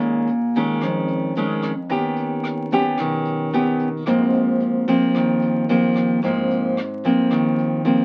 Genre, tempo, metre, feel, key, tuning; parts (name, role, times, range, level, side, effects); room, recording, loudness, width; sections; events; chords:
bossa nova; 111 BPM; 4/4; straight; Ab major; A4 = 445 Hz
nylon-string guitar; accompaniment; 0.0-8.0 s; F2 to G4; -20 LUFS; equal
upright bass; bass; 0.0-8.0 s; Ab1 to F2; -34 LUFS; equal
jazz brush drum kit; drums; 0.3-8.0 s; hi-hat, kick drum, rim click; -40 LUFS; equal
moderate club ambience, RT60 0.5 s; very old 78 rpm record, vinyl crackle; -20 LUFS; mono
0.0-8.0 A section
0.0 Bbm7; 1.9 Ebaug7; 4.1 Ab69